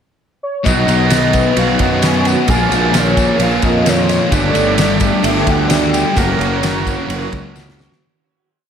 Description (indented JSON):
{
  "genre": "rock, shoegaze and dream pop",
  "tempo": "131 BPM",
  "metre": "4/4",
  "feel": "straight",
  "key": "unclear",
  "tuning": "A4 = 445 Hz",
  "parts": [
    { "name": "warm velvety synth lead", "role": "melody", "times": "0.4-7.6 s", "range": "C#5 to G#5", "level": "-21 LUFS", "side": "equal", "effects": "chorus, diffuse ambient delay" },
    { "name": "biting overdriven guitar", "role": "riff", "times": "0.6-8.0 s", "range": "A#2 to G4", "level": "-20 LUFS", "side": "right 8 dB", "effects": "reverse reverb" },
    { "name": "thick fuzz guitar", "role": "riff", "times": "0.6-8.0 s", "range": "F#2 to B3", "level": "-18 LUFS", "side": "left 8 dB", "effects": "distortion, analog chorus" },
    { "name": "phased analog pad", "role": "sustained chords", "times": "0.7-8.0 s", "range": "A4 to D6", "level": "-23 LUFS", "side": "equal", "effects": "phaser, chorus" },
    { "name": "picked plugged-in twelve-string acoustic guitar", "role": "arpeggios", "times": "0.7-8.0 s", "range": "D#3 to G4", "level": "-26 LUFS", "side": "right 8 dB", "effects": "none" },
    { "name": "fuzz fingered electric bass", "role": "bass", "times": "0.7-7.9 s", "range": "F#1 to F#2", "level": "-19 LUFS", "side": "equal", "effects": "overdrive" },
    { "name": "loose indie drum kit", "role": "drums", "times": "0.7-8.0 s", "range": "kick drum, ride cymbal, snare drum", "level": "-18 LUFS", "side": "right 1 dB", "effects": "none" },
    { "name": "tambourine", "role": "percussion", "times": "0.7-7.9 s", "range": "none", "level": "-31 LUFS", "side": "left 13 dB", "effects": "none" }
  ],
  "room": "moderate lush hall reverb, RT60 2.0 s",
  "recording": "dreamy mix soaked in reverb",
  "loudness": "-12 LUFS",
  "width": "side -8 dB against mid",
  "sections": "0.0-0.7 pickup bar; 0.7-8.0 verse",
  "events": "fade-out 6.2-8.0; drum fill 7.5-8.0",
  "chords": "0.0 N.C.; 0.7 Badd9; 2.5 A#m7; 4.3 Gsus2; 6.2 F#",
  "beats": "0.20 | 0.66 1.11 1.57 2.03 | 2.48 2.94 3.40 3.86 | 4.32 4.78 5.24 5.70 | 6.16 6.62 7.08 7.55"
}